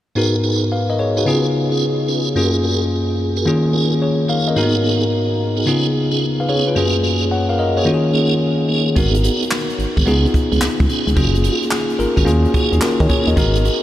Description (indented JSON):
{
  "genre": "R&B, new jack swing",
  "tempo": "109 BPM",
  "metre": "4/4",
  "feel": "swing 66% on 16ths",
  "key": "G# dorian",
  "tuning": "A4 = 442 Hz",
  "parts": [
    { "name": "bell-like tine electric piano", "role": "accompaniment", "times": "0.2-13.8 s", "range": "F#2 to F#5", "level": "-17 LUFS", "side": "left 1 dB", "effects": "none" },
    { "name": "tonewheel organ", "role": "stabs", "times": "0.2-13.8 s", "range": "A#3 to B4", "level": "-21 LUFS", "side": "right 3 dB", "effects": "chorus vibrato, fast rotary speaker, analog delay" },
    { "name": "solid FM bass", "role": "bass", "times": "9.0-13.7 s", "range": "F#1 to D#3", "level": "-17 LUFS", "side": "equal", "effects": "none" },
    { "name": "jazz brush drum kit", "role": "drums", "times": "9.0-13.8 s", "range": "handclaps, hi-hat, kick drum, snare drum", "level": "-20 LUFS", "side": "equal", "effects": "none" }
  ],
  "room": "moderate huge ambient reverb, RT60 8.8 s",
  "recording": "dreamy mix soaked in reverb",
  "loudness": "-14 LUFS",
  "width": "side -13 dB against mid",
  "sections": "0.2-9.0 A section; 9.0-13.8 B section",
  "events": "none",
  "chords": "0.2 G#m7; 1.3 C#7; 2.4 F#maj9; 3.5 D#7sus4; 4.6 G#m7; 5.7 C#7; 6.8 F#maj9; 7.9 D#7sus4; 9.0 G#m7; 10.1 C#7; 11.2 F#maj9; 12.3 D#7sus4"
}